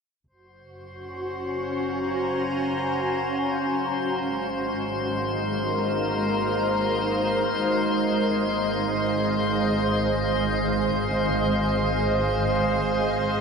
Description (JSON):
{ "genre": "ambient", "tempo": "free time", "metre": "none", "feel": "none", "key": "Ab mixolydian", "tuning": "A4 = 440 Hz", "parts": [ { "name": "soft additive organ-like pad", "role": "sustained chords", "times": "1.0-13.4 s", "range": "Ab3 to Bb5", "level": "-24 LUFS", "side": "equal", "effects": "ensemble chorus, built-in reverb, shimmer reverb" }, { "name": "dark studio double bass section", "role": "bass", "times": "0.3-13.4 s", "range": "Gb1 to Ab1", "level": "-32 LUFS", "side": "equal", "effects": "none" }, { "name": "drifting glass-harmonics texture", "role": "texture", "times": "0.9-13.4 s", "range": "C5 to C6", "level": "-29 LUFS", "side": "equal", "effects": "chorus, built-in reverb, shimmer reverb" } ], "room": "wet huge ambient reverb, RT60 7.6 s", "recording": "lossy compression artefacts", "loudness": "-22 LUFS", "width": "side -5 dB against mid", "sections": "0.3-13.4 A section", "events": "fade-in on double bass section 0.3-13.4", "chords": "0.3 Gbmaj7; 3.9 Ab13; 7.6 Ab6" }